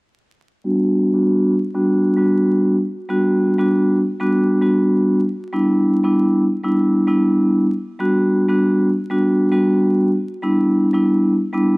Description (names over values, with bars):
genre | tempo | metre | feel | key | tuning
hip hop | 98 BPM | 4/4 | swing 62% on 16ths | unclear | A4 = 438 Hz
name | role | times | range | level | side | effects
vibraphone with soft mallets | solo | 0.6-11.8 s | G3 to F#4 | -15 LUFS | equal | high-pass filter, low-pass filter
room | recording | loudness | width
small room ambience | dry, gritty hardware recording, vinyl crackle | -15 LUFS | side -24 dB against mid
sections
0.6-3.1 A section; 3.1-11.8 B section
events
filter sweep on vibraphone 0.6-3.1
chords
0.6 Gmaj7; 5.5 G6; 8.0 Gmaj7; 10.4 G6